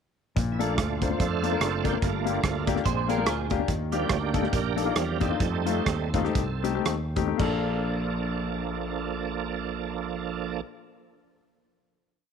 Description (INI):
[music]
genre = uptempo gospel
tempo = 108-145 BPM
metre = 4/4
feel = swing 57% on 8ths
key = Bb major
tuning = A4 = 438 Hz
[part]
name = clear baby grand piano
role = accompaniment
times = 0.4-10.6 s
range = Bb1 to C5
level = -30 LUFS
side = left 12 dB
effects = none
[part]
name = fingered electric bass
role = bass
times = 0.4-10.6 s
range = Gb1 to F2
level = -31 LUFS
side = equal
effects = none
[part]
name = natural country drum kit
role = drums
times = 0.4-7.5 s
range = crash cymbal, hi-hat, kick drum, rim click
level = -29 LUFS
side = right 2 dB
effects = none
[part]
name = bright tonewheel organ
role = sustained chords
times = 0.5-10.6 s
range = F3 to Bb4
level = -31 LUFS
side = right 11 dB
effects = fast rotary speaker, overdrive, chorus vibrato
[part]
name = clean electric guitar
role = second line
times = 2.9-3.7 s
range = F4 to C5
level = -32 LUFS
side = right 12 dB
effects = ensemble chorus
[sound]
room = light reverb, small room ambience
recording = 1960s-style stereo with parts hard left and right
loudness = -25 LUFS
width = side -7 dB against mid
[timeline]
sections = 0.4-7.4 breakdown; 7.4-11.8 final chord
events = tonewheel organ solo 0.4-7.4; slowing down 3.7-7.4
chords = 0.4 Bbmaj7; 2.0 Gm7; 2.9 Bb7; 3.7 Ebmaj7; 5.4 F7; 7.4 Bbmaj7